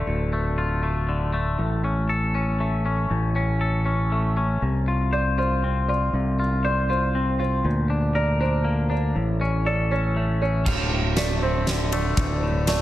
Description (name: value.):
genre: post-rock.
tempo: 119 BPM.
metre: 3/4.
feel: straight.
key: unclear.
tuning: A4 = 441 Hz.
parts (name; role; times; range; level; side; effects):
twangy electric guitar; arpeggios; 0.0-12.8 s; D2 to C5; -25 LUFS; left 2 dB; tape echo.
growling fingered electric bass; bass; 0.0-12.8 s; D1 to D2; -23 LUFS; equal; overdrive.
felt-muted upright piano; arpeggios; 5.1-12.8 s; C5 to D5; -30 LUFS; right 5 dB; tape echo.
pedal steel guitar; sustained chords; 10.7-12.8 s; D4 to F5; -35 LUFS; right 2 dB; none.
huge arena drum kit; drums; 10.7-12.8 s; crash cymbal, kick drum, ride cymbal, snare drum; -25 LUFS; right 1 dB; none.
room: light reverb, small room ambience.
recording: none.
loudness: -21 LUFS.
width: side -14 dB against mid.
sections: 0.0-10.7 A section; 10.7-12.8 B section.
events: none.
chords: 0.0 Dm; 1.6 A; 4.6 Csus4; 7.6 Bb/D; 9.2 A; 10.7 Dm7.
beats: | 0.07 0.58 1.08 | 1.59 2.09 2.60 | 3.10 3.61 4.11 | 4.62 5.12 5.63 | 6.13 6.64 7.14 | 7.64 8.15 8.65 | 9.16 9.66 10.16 | 10.67 11.17 11.67 | 12.17 12.68.